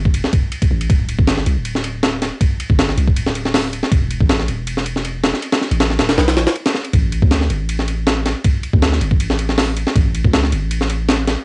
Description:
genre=drum and bass, jungle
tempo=159 BPM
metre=4/4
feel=straight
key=unclear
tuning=A4 = 445 Hz
part: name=long sustained 808-style bass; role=bass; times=0.0-11.4 s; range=D1 to D2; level=-19 LUFS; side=equal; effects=none
part: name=breakbeat sampler-style drum kit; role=drums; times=0.1-11.4 s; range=hi-hat, kick drum, ride cymbal, snare drum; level=-16 LUFS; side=equal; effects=cassette tape
room=light reverb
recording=home recording on cassette, vinyl crackle, nothing above 10.8 kHz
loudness=-14 LUFS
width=side -34 dB against mid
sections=0.0-11.4 A section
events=none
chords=none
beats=0.14 0.52 | 0.90 1.27 1.65 2.03 | 2.41 2.78 3.16 3.54 | 3.92 4.29 4.67 5.05 | 5.43 5.80 6.18 6.56 | 6.93 7.31 7.69 8.07 | 8.45 8.82 9.20 9.58 | 9.95 10.33 10.71 11.09

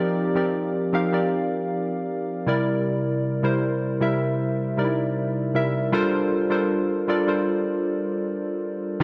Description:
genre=R&B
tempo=78 BPM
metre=4/4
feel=straight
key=G minor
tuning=A4 = 441 Hz
part: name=warm analog keys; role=solo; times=0.0-9.0 s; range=C3 to D6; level=-24 LUFS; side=equal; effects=chorus
room=moderate lush hall reverb, RT60 2.4 s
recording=none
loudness=-24 LUFS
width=mono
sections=0.0-9.0 A section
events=none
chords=0.0 F13sus4; 2.5 C7; 5.9 Gm11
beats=0.54 1.31 2.08 | 2.85 3.62 4.39 5.16 | 5.93 6.70 7.47 8.24 | 9.01

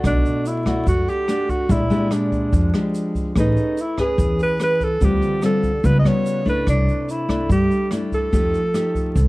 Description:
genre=bossa nova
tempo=145 BPM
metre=4/4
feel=straight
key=unclear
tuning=A4 = 439 Hz
part: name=nylon-string guitar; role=accompaniment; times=0.0-9.3 s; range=A#2 to B4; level=-22 LUFS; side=left 1 dB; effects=none
part: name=upright bass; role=bass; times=0.0-9.3 s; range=A1 to G2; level=-19 LUFS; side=equal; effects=none
part: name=jazz brush drum kit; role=drums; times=0.0-9.3 s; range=hi-hat, kick drum, rim click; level=-25 LUFS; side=equal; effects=none
part: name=tube shaker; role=percussion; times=0.0-9.3 s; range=none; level=-46 LUFS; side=right 3 dB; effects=none
part: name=breathy alto saxophone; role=melody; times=0.1-9.3 s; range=D4 to D#5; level=-22 LUFS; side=right 1 dB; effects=analog delay
room=light reverb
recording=dark, warm production, vinyl crackle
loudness=-17 LUFS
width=side -20 dB against mid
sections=0.0-9.3 A section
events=none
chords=0.0 Bm7; 1.7 A#6; 3.4 Amaj9; 5.0 Dm7; 5.8 C#7#11; 6.7 C69; 8.3 F9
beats=| 0.04 0.46 0.87 1.29 | 1.70 2.11 2.53 2.94 | 3.36 3.77 4.19 4.60 | 5.01 5.43 5.84 6.26 | 6.67 7.09 7.50 7.92 | 8.33 8.74 9.16

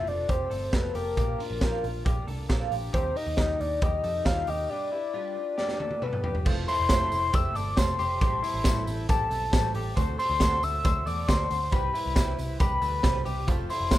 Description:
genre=jangly indie pop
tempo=137 BPM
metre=4/4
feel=straight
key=unclear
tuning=A4 = 439 Hz
part: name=soft octave-layered synth lead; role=melody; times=0.0-14.0 s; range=Bb4 to E6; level=-29 LUFS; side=left 2 dB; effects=chorus
part: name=fingerpicked twelve-string acoustic guitar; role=accompaniment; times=0.0-14.0 s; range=A2 to B4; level=-37 LUFS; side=right 7 dB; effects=lush chorus
part: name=electric guitar through a small old amp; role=arpeggios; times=0.0-14.0 s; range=Eb4 to D5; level=-38 LUFS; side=left 4 dB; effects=none
part: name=vintage muted picked electric bass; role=bass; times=0.0-14.0 s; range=F1 to F2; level=-32 LUFS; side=equal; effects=none
part: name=raw garage drum kit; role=drums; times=0.1-14.0 s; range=crash cymbal, hi-hat, kick drum, snare drum, toms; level=-28 LUFS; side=right 1 dB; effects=none
part: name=tambourine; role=percussion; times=6.5-14.0 s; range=none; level=-46 LUFS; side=right 6 dB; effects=none
room=small room ambience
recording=rough home demo mix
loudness=-24 LUFS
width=side -14 dB against mid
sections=0.0-6.5 A section; 6.5-14.0 B section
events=break 4.7-6.5; drum fill 5.6-6.5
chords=0.0 F; 1.2 Bb; 2.9 Eb; 4.7 G; 6.5 Fmaj7; 8.2 Am7; 10.0 D7; 11.7 Cmaj7; 13.5 Fmaj7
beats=0.29 0.73 | 1.17 1.61 2.06 2.50 | 2.94 3.38 3.82 4.26 | 4.70 5.14 5.58 6.02 | 6.46 6.90 7.34 7.78 | 8.22 8.66 9.10 9.53 | 9.97 10.41 10.85 11.29 | 11.73 12.16 12.60 13.04 | 13.48 13.92

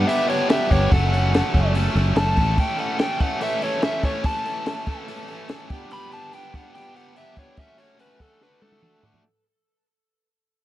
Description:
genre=indie rock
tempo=144 BPM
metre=4/4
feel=straight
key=A mixolydian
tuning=A4 = 439 Hz
part: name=overdriven semi-hollow guitar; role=melody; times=0.0-9.0 s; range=A4 to B5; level=-26 LUFS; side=equal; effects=none
part: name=overdriven electric guitar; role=riff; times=0.0-9.2 s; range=E3 to A4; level=-26 LUFS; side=equal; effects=none
part: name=fingered electric bass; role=bass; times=0.0-2.6 s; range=F#1 to A1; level=-20 LUFS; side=equal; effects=none
part: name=compact cocktail drum kit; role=drums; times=0.1-9.2 s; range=hi-hat, kick drum, snare drum, toms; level=-22 LUFS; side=equal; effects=none
room=small room ambience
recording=dry, close 1970s-style studio recording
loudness=-19 LUFS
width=side -14 dB against mid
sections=0.0-9.2 A section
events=fade-out 0.0-9.2; overdriven electric guitar solo 0.0-9.2; drum fill 8.4-9.2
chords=0.0 G; 0.9 F#m; 2.6 A; 5.7 G; 7.6 F#m; 8.4 D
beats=0.08 0.50 | 0.91 1.33 1.75 2.16 | 2.58 2.99 3.41 3.83 | 4.24 4.66 5.08 5.49 | 5.91 6.33 6.74 7.16 | 7.57 7.99 8.40 8.82

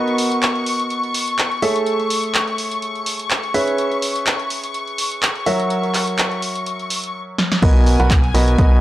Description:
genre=piano house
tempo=125 BPM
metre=4/4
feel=swing 55% on 16ths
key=B major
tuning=A4 = 440 Hz
part: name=clear symphonic string section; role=sustained chords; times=0.0-8.8 s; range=G#5 to C#6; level=-24 LUFS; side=left 3 dB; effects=sidechain pumping, low-pass filter
part: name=clear concert grand piano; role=riff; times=0.0-8.8 s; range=F#3 to F#5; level=-21 LUFS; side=right 1 dB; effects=vintage 12-bit sampler grit, sidechain pumping, tape echo
part: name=punchy analog drum machine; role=drums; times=0.1-8.7 s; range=crash cymbal, handclaps, hi-hat, snare drum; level=-21 LUFS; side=equal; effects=none
part: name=organ-like FM bass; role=bass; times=7.6-8.8 s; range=B1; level=-17 LUFS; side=equal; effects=sidechain pumping
part: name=electronic kick drum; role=drums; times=7.6-8.7 s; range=none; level=-14 LUFS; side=equal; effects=none
room=digital ambience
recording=dry, gritty hardware recording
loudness=-16 LUFS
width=side -14 dB against mid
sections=0.0-7.6 A section; 7.6-8.8 B section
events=drum fill 7.4; drop 7.6-8.8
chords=0.0 Bmaj7; 1.6 Amaj7; 3.5 C#m7; 5.5 F#7; 7.6 Bmaj7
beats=0.42 0.90 1.38 | 1.86 2.34 2.82 3.30 | 3.78 4.26 4.74 5.22 | 5.70 6.18 6.66 7.14 | 7.62 8.10 8.58

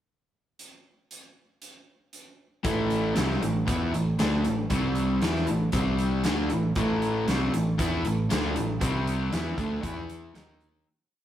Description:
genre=classic rock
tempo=117 BPM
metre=4/4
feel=straight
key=unclear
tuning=A4 = 440 Hz
part: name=big rock drum kit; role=drums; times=0.6-10.7 s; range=hi-hat, kick drum, snare drum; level=-31 LUFS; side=equal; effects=none
part: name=crunchy overdriven guitar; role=riff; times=2.6-10.8 s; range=A2 to E4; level=-28 LUFS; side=left 4 dB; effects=none
part: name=overdriven semi-hollow guitar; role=riff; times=2.6-10.8 s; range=A2 to E4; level=-30 LUFS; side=right 5 dB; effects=spring reverb
part: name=growling fingered electric bass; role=bass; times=2.7-10.8 s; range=A1 to E2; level=-31 LUFS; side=equal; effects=overdrive
room=moderate studio reverb, RT60 0.6 s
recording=rough rehearsal-room recording, warm saturation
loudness=-24 LUFS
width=side -11 dB against mid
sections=0.6-2.6 pickup bar; 2.6-10.9 riff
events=fade-out 8.8-10.9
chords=0.6 N.C.; 2.6 A5; 4.7 C5; 5.2 A5; 5.7 C5; 6.2 A5; 8.8 C5; 9.3 A5; 9.8 E5; 10.3 D#5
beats=| 0.59 1.11 1.62 2.13 | 2.65 3.16 3.68 4.19 | 4.71 5.22 5.74 6.25 | 6.76 7.28 7.79 8.30 | 8.81 9.32 9.83 10.34

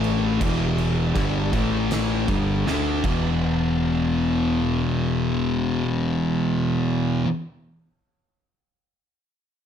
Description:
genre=stoner and doom metal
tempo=79 BPM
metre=4/4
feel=straight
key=E minor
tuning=A4 = 440 Hz
part: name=thick fuzz guitar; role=riff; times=0.0-7.3 s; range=E2 to D4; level=-23 LUFS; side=left 6 dB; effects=distortion
part: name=thick fuzz guitar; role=riff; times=0.0-7.3 s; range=E2 to D4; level=-26 LUFS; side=right 9 dB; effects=distortion
part: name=fuzz picked electric bass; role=bass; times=0.0-7.2 s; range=E1 to D2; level=-28 LUFS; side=equal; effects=overdrive
part: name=oversized low-tuned drum kit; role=drums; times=0.0-3.2 s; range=crash cymbal, kick drum, snare drum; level=-29 LUFS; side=equal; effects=none
room=moderate large studio reverb, RT60 0.9 s, small room ambience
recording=none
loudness=-20 LUFS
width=side -8 dB against mid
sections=0.0-3.4 A section; 3.4-6.5 B section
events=drum fill 2.7-3.4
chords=0.4 Em; 1.5 A5; 2.3 G5; 2.7 D5; 3.0 E5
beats=| 0.40 1.15 1.90 2.66 | 3.42 4.18 4.94 5.71

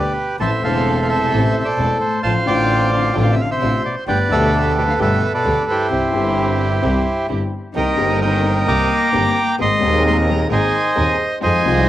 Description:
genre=tango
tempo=131 BPM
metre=4/4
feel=rubato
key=C major, C minor from 7.8 s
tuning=A4 = 440 Hz
part: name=bandoneon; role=melody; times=0.0-11.9 s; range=E4 to D6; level=-18 LUFS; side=right 2 dB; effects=cassette tape
part: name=rich cello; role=second line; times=0.0-11.9 s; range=G2 to Bb3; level=-26 LUFS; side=left 6 dB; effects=none
part: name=warm concert grand piano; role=accompaniment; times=0.0-11.9 s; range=Eb1 to A4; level=-24 LUFS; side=left 6 dB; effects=none
part: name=clear symphonic string section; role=stabs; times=0.0-11.9 s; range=E3 to Bb4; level=-27 LUFS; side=right 6 dB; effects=none
part: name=clear double bass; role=bass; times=0.0-11.9 s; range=E1 to F2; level=-20 LUFS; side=equal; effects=none
room=light reverb, small room reverb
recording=home recording on cassette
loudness=-15 LUFS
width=side -13 dB against mid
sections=0.0-7.8 A section; 7.8-11.9 B section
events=none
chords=0.4 Am; 2.2 Dm7/A; 4.1 Gadd9; 5.9 C; 7.8 Cm7; 9.6 Abadd9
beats=| 0.40 0.86 1.32 1.78 | 2.24 2.70 3.16 3.62 | 4.08 4.53 4.99 5.45 | 5.90 6.36 6.82 7.29 | 7.76 8.22 8.68 9.14 | 9.59 10.05 10.51 10.96 | 11.42 11.88

